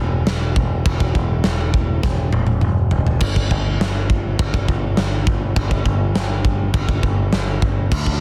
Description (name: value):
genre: heavy metal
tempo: 102 BPM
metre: 4/4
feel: straight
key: unclear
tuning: A4 = 438 Hz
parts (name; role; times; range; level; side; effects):
- growling picked electric bass; bass; 0.0-8.2 s; E1 to D2; -22 LUFS; equal; overdrive
- big rock drum kit; drums; 0.3-8.2 s; china cymbal, crash cymbal, kick drum, snare drum, toms; -21 LUFS; equal; none
room: little or no reverb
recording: dense, heavily limited modern master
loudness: -19 LUFS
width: mono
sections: 0.0-8.2 A section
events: drum fill 2.0-3.2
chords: none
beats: 0.27 | 0.86 1.45 2.03 2.62 | 3.21 3.79 4.38 4.97 | 5.56 6.15 6.73 7.32 | 7.91